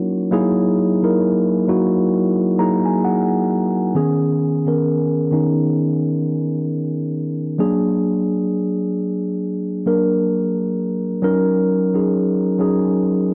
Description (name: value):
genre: R&B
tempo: 66 BPM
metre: 4/4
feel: swing 57% on 16ths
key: B major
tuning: A4 = 441 Hz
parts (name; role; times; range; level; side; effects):
- mellow tine electric piano; solo; 0.0-13.3 s; D#3 to A#5; -19 LUFS; equal; cassette tape
room: moderate studio reverb, RT60 0.6 s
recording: home recording on cassette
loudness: -19 LUFS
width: mono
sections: 0.0-3.9 A section; 3.9-13.3 B section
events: tine electric piano fill 2.1-3.9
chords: 0.3 F#13; 3.9 B69; 7.6 A#7b13; 11.2 D#m7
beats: | 0.31 1.22 2.12 3.03 | 3.94 4.85 5.76 6.67 | 7.58 8.49 9.40 10.31 | 11.21 12.12 13.03